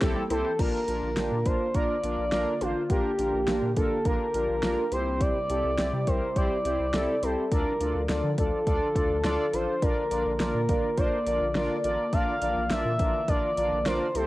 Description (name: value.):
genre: synth-pop.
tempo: 104 BPM.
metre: 4/4.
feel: straight.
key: unclear.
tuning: A4 = 440 Hz.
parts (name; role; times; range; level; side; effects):
analog synth brass; accompaniment; 0.0-14.3 s; Bb3 to D5; -31 LUFS; equal; chorus, cassette tape.
sweeping resonant pad; sustained chords; 0.0-14.3 s; C3 to G4; -36 LUFS; left 1 dB; chorus, cassette tape.
resonant blip pluck; arpeggios; 0.0-0.5 s; G3 to G4; -37 LUFS; left 1 dB; none.
round analog bass; bass; 0.0-14.3 s; A1 to D3; -33 LUFS; equal; none.
deep house drum kit; drums; 0.0-14.3 s; crash cymbal, hi-hat, kick drum, snare drum; -29 LUFS; equal; cassette tape.
expressive portamento lead; melody; 0.3-14.3 s; F4 to F5; -28 LUFS; equal; chorus, cassette tape, tape echo.
room: light reverb, digital ambience.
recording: home recording on cassette.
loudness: -24 LUFS.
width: side -18 dB against mid.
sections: 0.6-14.3 A section.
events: none.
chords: 0.0 C; 0.6 Bb; 4.9 C; 7.5 Dm; 9.8 Bb.